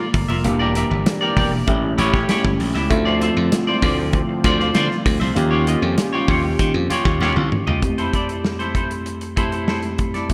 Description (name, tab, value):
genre	polished 1980s jazz-funk pop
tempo	98 BPM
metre	4/4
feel	straight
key	F major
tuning	A4 = 440 Hz
part	barky tine electric piano	accompaniment	0.0-10.3 s	F2 to A4	-26 LUFS	equal	overdrive, subtle chorus
part	chorused pulse-width pad	sustained chords	0.0-7.8 s	D3 to G4	-30 LUFS	equal	none
part	semi-hollow electric guitar	riff	0.0-10.3 s	E4 to E5	-25 LUFS	equal	lush chorus
part	glassy slap bass	bass	0.1-7.8 s	E1 to Eb3	-23 LUFS	equal	none
part	modern studio drum kit	drums	0.1-10.3 s	hi-hat, kick drum, snare drum, toms	-24 LUFS	equal	gated reverb
part	congas	percussion	0.3-7.8 s	none	barely audible	none	none
room	moderate lush hall reverb, RT60 2.4 s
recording	bright 1980s-style digital production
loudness	-19 LUFS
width	mono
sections	0.0-7.8 A section; 7.8-10.3 B section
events	drum fill 7.2-7.8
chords	0.4 Em7b5; 1.7 A7; 2.9 Dm7; 5.4 Eb9; 7.8 Fmaj7